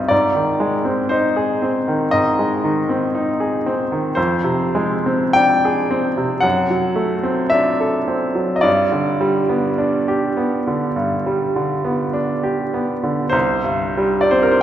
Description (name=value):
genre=classical, romantic nocturne for solo piano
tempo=43-61 BPM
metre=4/4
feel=rubato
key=unclear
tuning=A4 = 439 Hz
part: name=bright baby grand piano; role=solo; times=0.0-14.6 s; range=C2 to G5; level=-16 LUFS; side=equal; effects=none
room=wet concert hall reverb, RT60 2.0 s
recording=heard from further back in the room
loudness=-16 LUFS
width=side -11 dB against mid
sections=0.0-14.6 A section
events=none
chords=0.1 Ab; 4.2 Dm7b5/F; 6.4 D7/F#; 8.7 G; 13.3 C5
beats=| 0.12 1.11 2.13 3.15 | 4.17 5.36 6.44 7.54 | 8.66 9.82 11.00 12.17 | 13.34